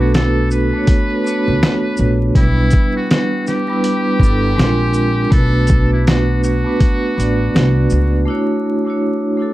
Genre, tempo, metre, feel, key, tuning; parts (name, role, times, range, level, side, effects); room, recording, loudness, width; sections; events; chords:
lo-fi hip hop; 81 BPM; 4/4; swing 62% on 16ths; B minor; A4 = 440 Hz
trumpet with metal mute; melody; 0.0-8.2 s; E4 to B4; -24 LUFS; equal; low-pass filter
vibraphone with medium hard mallets; accompaniment; 0.0-9.5 s; G3 to D5; -17 LUFS; right 1 dB; cassette tape, low-pass filter
upright bass; bass; 0.0-8.2 s; G1 to C#2; -16 LUFS; equal
dusty soul sampler-style drum kit; drums; 0.1-8.1 s; hi-hat, kick drum, shaker, snare drum; -14 LUFS; equal; overdrive
light reverb; vinyl crackle, faint mains hum; -13 LUFS; side -16 dB against mid
0.0-8.3 A section; 8.3-9.5 B section
0.0 Bm7; 2.4 Em7/B; 4.6 A#9; 5.3 Bm7; 8.3 Dmaj9